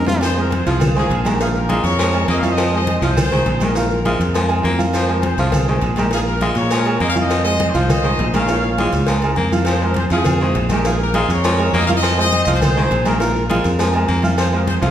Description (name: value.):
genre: latin, salsa.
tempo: 203 BPM.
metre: 4/4.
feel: straight.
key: F minor.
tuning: A4 = 440 Hz.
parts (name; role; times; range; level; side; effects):
bright upright piano; accompaniment; 0.0-14.9 s; F3 to F5; -21 LUFS; right 2 dB; none.
fingered electric bass; bass; 0.0-14.9 s; Bb1 to Bb2; -19 LUFS; equal; none.
bongos and cowbell; percussion; 0.1-14.9 s; none; -27 LUFS; left 3 dB; none.
congas; percussion; 0.1-14.8 s; none; -25 LUFS; left 1 dB; none.
maracas; percussion; 0.1-14.9 s; none; -35 LUFS; right 3 dB; none.
timbales and agogo bells; percussion; 0.1-14.8 s; none; -27 LUFS; right 2 dB; none.
bright trumpet section; melody; 0.2-14.9 s; Eb4 to F5; -22 LUFS; equal; none.
growling baritone saxophone; second line; 0.2-14.9 s; Eb3 to Bb3; -24 LUFS; left 2 dB; none.
room: wet recital hall reverb, RT60 1.3 s.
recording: recorded in a church or concert hall.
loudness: -14 LUFS.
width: side -10 dB against mid.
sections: 0.2-9.7 A section; 9.7-14.9 A section.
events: drum fill 0.0.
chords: 0.2 Fm7; 1.4 Bbm7; 2.6 Fm7; 3.8 Bb5; 4.9 Fm7; 6.1 Bbm7; 7.3 Fm7; 8.5 Bbm7; 9.7 Fm7; 10.8 Bbm7; 12.0 Fm7; 13.2 Bb5; 14.4 Fm.